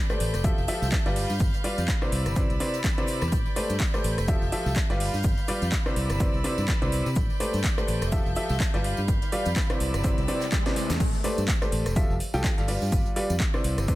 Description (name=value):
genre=piano house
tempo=125 BPM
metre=4/4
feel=swing 57% on 16ths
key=unclear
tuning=A4 = 441 Hz
part: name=clear chamber violin section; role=sustained chords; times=0.0-11.0 s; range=D5 to G6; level=-36 LUFS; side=right 1 dB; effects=sidechain pumping
part: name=bright upright piano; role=riff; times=0.1-14.0 s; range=C3 to G5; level=-30 LUFS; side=equal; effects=sidechain pumping, digital delay
part: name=big rock drum kit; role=drums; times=0.1-14.0 s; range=hi-hat, shaker, snare drum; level=-42 LUFS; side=equal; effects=none
part: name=house drum kit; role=drums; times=0.1-14.0 s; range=crash cymbal, handclaps, hi-hat, rim click, snare drum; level=-33 LUFS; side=equal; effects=overdrive
part: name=tambourine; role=percussion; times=0.1-14.0 s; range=none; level=-45 LUFS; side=right 1 dB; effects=none
part: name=fingered electric bass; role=bass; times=0.2-14.0 s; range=F1 to C3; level=-28 LUFS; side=equal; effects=sidechain pumping
part: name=electronic kick drum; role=drums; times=0.4-14.0 s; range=none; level=-26 LUFS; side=equal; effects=overdrive
part: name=riser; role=sound effects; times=8.6-11.0 s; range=none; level=-38 LUFS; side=left 2 dB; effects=none
room=small room ambience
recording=none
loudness=-23 LUFS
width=side -17 dB against mid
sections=0.0-11.0 A section; 11.0-14.0 B section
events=riser 8.6-11.0; drum fill 10.6-11.0; drop 11.0-14.0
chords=0.4 Fmaj9; 1.2 G7; 2.1 Cmaj9; 3.3 Am11; 4.3 Fmaj9; 5.0 G7; 6.0 Cmaj9; 7.2 Am11; 8.1 Fmaj9; 8.8 G7; 9.8 Cmaj9; 11.0 Am11; 12.0 Fmaj9; 12.7 G7